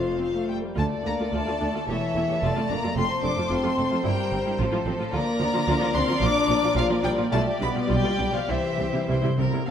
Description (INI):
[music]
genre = quick classical-period movement for symphony orchestra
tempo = 100-113 BPM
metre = 2/4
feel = rubato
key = D minor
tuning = A4 = 440 Hz
[part]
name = rich chamber violin section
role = melody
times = 0.0-9.7 s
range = E5 to D6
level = -30 LUFS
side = left 2 dB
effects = none
[part]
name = rich studio violin section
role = second line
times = 0.0-9.7 s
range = G4 to D5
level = -29 LUFS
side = left 4 dB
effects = none
[part]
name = warm clarinet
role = second line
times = 0.0-0.5 s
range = F4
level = -28 LUFS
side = left 6 dB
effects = none
[part]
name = rich chamber viola section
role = accompaniment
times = 0.0-9.7 s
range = F3 to G4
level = -30 LUFS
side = right 1 dB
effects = none
[part]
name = bright studio double bass section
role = bass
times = 0.0-9.7 s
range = E1 to D2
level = -30 LUFS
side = right 3 dB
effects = none
[part]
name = rich symphonic cello section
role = bass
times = 0.0-9.6 s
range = D2 to D3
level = -32 LUFS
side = right 2 dB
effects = none
[part]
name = warm French horn section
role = sustained chords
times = 0.2-9.1 s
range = E3 to D4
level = -28 LUFS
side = left 2 dB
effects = none
[part]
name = timpani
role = percussion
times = 8.5-9.6 s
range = C3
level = -28 LUFS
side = equal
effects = none
[sound]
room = wet scoring stage reverb, RT60 1.5 s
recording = dark, warm production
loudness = -22 LUFS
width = side -8 dB against mid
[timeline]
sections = 0.8-9.7 A section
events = timpani fill 8.5-9.7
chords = 0.0 F; 0.8 Dm; 1.9 A/E; 2.4 Dm/F; 3.0 F; 4.0 C7(no3)/G; 4.6 F/A; 5.1 Bb/D; 6.2 Bb; 7.3 G7/B; 8.5 C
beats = 0.19 | 0.76 1.32 | 1.87 2.42 | 2.96 3.50 | 4.05 4.59 | 5.13 5.67 | 6.22 6.76 | 7.32 7.89 | 8.48 9.08 | 9.67